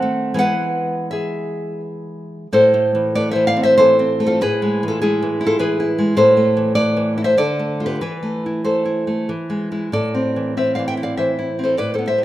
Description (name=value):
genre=romantic piece for solo classical guitar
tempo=82-105 BPM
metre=3/4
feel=rubato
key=A minor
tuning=A4 = 440 Hz
part: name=nylon-string guitar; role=solo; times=0.0-12.2 s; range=A2 to G5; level=-16 LUFS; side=equal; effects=none
room=moderate recital hall reverb, RT60 1.8 s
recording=minimal, uncompressed stereo recording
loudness=-16 LUFS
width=side -14 dB against mid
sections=0.0-2.5 A section; 2.5-12.2 B section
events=none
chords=0.4 E; 2.5 Am; 4.4 E/A; 6.2 Am; 7.4 Dm; 8.0 Am/E; 9.3 E; 9.9 Am